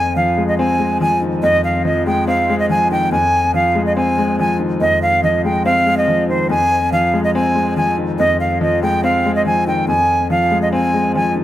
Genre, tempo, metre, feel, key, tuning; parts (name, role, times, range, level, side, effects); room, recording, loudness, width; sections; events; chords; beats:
hip hop; 142 BPM; 4/4; half-time; F minor; A4 = 440 Hz
silver concert flute; melody; 0.0-11.3 s; C5 to Ab5; -16 LUFS; right 1 dB; analog delay
dark concert grand piano; accompaniment; 0.0-11.4 s; F2 to C4; -17 LUFS; left 2 dB; analog delay
light reverb, studio reverb; echo-heavy mix; -14 LUFS; side -13 dB against mid
0.0-11.4 A section
0.0 Fm7
0.16 0.59 1.01 | 1.43 1.85 2.28 2.70 | 3.12 3.54 3.97 4.39 | 4.81 5.23 5.66 6.08 | 6.50 6.92 7.35 7.77 | 8.19 8.62 9.04 9.46 | 9.88 10.30 10.73 11.15